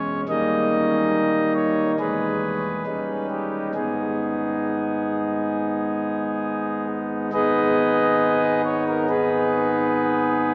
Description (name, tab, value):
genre	classical, chorale-style piece for pipe organ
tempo	68 BPM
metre	4/4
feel	straight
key	G# minor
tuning	A4 = 441 Hz
part	pipe organ, principal	solo	0.0-10.5 s	D#1 to D#5	-22 LUFS	equal	none
room	wet cathedral reverb, RT60 6.0 s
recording	heard from further back in the room, small speaker sound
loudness	-23 LUFS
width	mono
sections	0.0-7.3 A section; 7.3-10.5 A section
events	none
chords	0.3 D#; 2.0 E; 2.9 D#7; 3.7 G#m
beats	| 0.28 1.14 1.99 2.86 | 3.75 4.65 5.54 6.44 | 7.34 8.22 9.09 9.96